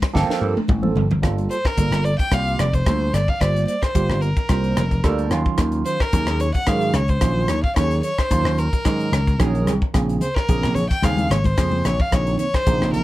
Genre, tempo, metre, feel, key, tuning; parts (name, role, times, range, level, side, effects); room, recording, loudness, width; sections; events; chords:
electric jazz fusion; 110 BPM; 4/4; swing 54% on 16ths; A4 = 440 Hz
vintage slap bass; bass; 0.0-13.0 s; F1 to Ab2; -21 LUFS; equal
crisp fusion drum kit; drums; 0.0-13.0 s; hi-hat, kick drum, ride cymbal, rim click, snare drum, toms; -22 LUFS; equal
barky tine electric piano; accompaniment; 0.1-13.0 s; Db3 to C5; -24 LUFS; right 5 dB; medium stereo tremolo, phaser
congas; percussion; 0.7-1.2, 10.2-13.0 s; -27 LUFS; left 2 dB
rich violin; melody; 1.5-13.0 s; Bb4 to G5; -24 LUFS; left 1 dB; slapback echo
little or no reverb; -17 LUFS; side -16 dB against mid
0.0-1.2 A section; 1.2-13.0 B section
drum fill 0.1-1.2
0.0 Gm11; 1.2 Gm9; 5.3 Ebm9; 9.9 Bbm9